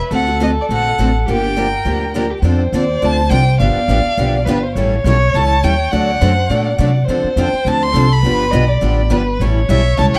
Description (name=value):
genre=acoustic string swing (jazz manouche)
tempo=206 BPM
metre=4/4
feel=swing 57% on 8ths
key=unclear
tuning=A4 = 438 Hz
part: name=dark violin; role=second line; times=0.0-10.2 s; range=G4 to Eb5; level=-23 LUFS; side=equal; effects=none
part: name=warm violin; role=melody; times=0.1-10.2 s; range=C#5 to C6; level=-22 LUFS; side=equal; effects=tape echo
part: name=picked steel-string acoustic guitar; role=accompaniment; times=0.1-10.2 s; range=D3 to A4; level=-25 LUFS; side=equal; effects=none
part: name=picked steel-string acoustic guitar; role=accompaniment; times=0.1-10.2 s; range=D3 to A4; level=-25 LUFS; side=equal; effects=none
part: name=upright bass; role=bass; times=0.1-10.2 s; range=G1 to D3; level=-18 LUFS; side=equal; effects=none
room=moderate studio reverb, RT60 0.5 s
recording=dark, warm production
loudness=-15 LUFS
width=mono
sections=0.0-2.4 A section; 2.4-10.2 B section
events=none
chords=0.1 D7b13; 1.3 Gm7; 2.4 Dm7; 3.6 G7; 4.8 A7; 5.9 D; 7.1 Dm7; 8.2 G7; 9.4 A7